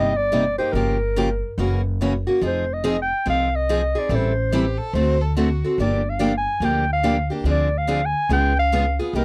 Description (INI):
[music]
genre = acoustic string swing (jazz manouche)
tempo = 143 BPM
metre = 4/4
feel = swing 64% on 8ths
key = unclear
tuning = A4 = 440 Hz
[part]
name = mellow clarinet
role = melody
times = 0.0-9.2 s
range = Bb4 to Ab5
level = -25 LUFS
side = equal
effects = none
[part]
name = picked steel-string acoustic guitar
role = accompaniment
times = 0.0-9.2 s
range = C3 to A4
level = -25 LUFS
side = equal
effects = none
[part]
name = upright bass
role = bass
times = 0.0-9.2 s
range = F1 to D2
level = -26 LUFS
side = equal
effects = none
[part]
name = rich violin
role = second line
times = 4.5-5.7 s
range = F#4 to C5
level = -30 LUFS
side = equal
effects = none
[sound]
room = little or no reverb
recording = dry, close 1970s-style studio recording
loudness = -21 LUFS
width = mono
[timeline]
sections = 0.0-9.2 A section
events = none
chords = 0.0 Cm9; 0.7 Gm7b5; 1.6 F#7; 2.4 Fm7; 4.1 Am7; 4.9 D7; 5.8 Gm7; 7.5 Dm7b5; 8.3 Db7